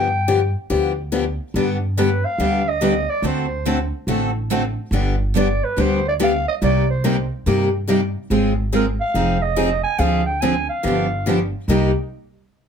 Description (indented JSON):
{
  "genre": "acoustic string swing (jazz manouche)",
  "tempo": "142 BPM",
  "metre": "4/4",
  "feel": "swing 63% on 8ths",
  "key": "C minor",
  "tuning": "A4 = 438 Hz",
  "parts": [
    { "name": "growling clarinet", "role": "melody", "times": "0.0-11.9 s", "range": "Bb4 to Ab5", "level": "-22 LUFS", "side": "right 2 dB", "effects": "none" },
    { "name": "picked steel-string acoustic guitar", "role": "accompaniment", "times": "0.0-11.9 s", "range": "C3 to A4", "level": "-21 LUFS", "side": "left 5 dB", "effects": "none" },
    { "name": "upright bass", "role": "bass", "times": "0.0-11.9 s", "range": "F1 to G2", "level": "-23 LUFS", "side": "right 1 dB", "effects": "none" },
    { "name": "picked steel-string acoustic guitar", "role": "accompaniment", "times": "1.6-11.9 s", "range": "C3 to A4", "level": "-24 LUFS", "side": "right 5 dB", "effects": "none" }
  ],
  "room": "moderate club reverb, RT60 0.7 s",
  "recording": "none",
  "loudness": "-17 LUFS",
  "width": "side -7 dB against mid",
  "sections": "0.0-8.3 A section; 8.3-11.7 B section; 11.7-12.7 C section",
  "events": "none",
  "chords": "0.0 G7; 1.5 G; 3.2 D7; 4.9 G; 6.6 Cm7; 8.3 Ab6; 9.1 Fm7; 10.0 Dm7b5; 10.8 G7; 11.7 Cm7"
}